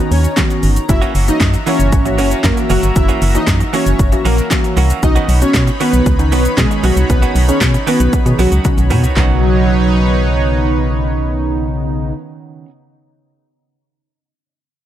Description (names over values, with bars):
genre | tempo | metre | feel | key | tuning
dance-pop | 116 BPM | 4/4 | straight | B major | A4 = 442 Hz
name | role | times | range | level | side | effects
funky polysynth comp | accompaniment | 0.0-12.1 s | C#3 to G#4 | -21 LUFS | left 1 dB | chorus, sidechain pumping
chorused pulse-width pad | sustained chords | 0.0-12.1 s | D#4 to B5 | -24 LUFS | equal | sidechain pumping
soft supersaw | melody | 0.1-10.7 s | F#3 to E5 | -18 LUFS | equal | none
organ-like FM bass | bass | 0.1-12.1 s | F#1 to B2 | -14 LUFS | equal | sidechain pumping
pop drum kit | drums | 0.1-9.3 s | handclaps, hi-hat, kick drum, shaker, snare drum, toms | -16 LUFS | equal | overdrive
direct-recorded clean electric guitar | riff | 0.9-12.7 s | D#3 to F#4 | -24 LUFS | right 8 dB | lush chorus
room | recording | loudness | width
digital ambience | none | -11 LUFS | side -11 dB against mid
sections
0.0-9.2 A section; 9.2-13.3 B section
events
drop 0.0-9.2; drum fill 8.7-9.2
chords
0.0 Badd9; 0.9 F#7; 5.0 Badd9